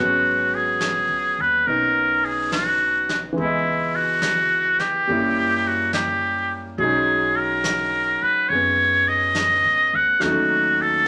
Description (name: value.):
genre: jazz ballad.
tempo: 70 BPM.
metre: 4/4.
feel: swing 68% on 8ths.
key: G# minor.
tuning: A4 = 441 Hz.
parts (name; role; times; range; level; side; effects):
trumpet with metal mute; melody; 0.0-11.1 s; E4 to F#5; -21 LUFS; equal; none.
warm grand piano; accompaniment; 0.0-11.1 s; E3 to D#5; -29 LUFS; equal; none.
upright bass; bass; 0.0-11.1 s; G#1 to G#2; -38 LUFS; equal; none.
vintage brush drum kit; drums; 0.8-11.1 s; brushed snare drum, hi-hat, snare drum; -34 LUFS; equal; none.
room: wet studio reverb, RT60 0.8 s.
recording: none.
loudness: -20 LUFS.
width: mono.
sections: 0.0-11.1 A section.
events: none.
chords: 0.0 G#m7; 3.4 C#m7; 5.1 F#7b9; 6.8 B69; 10.2 D#m7b5.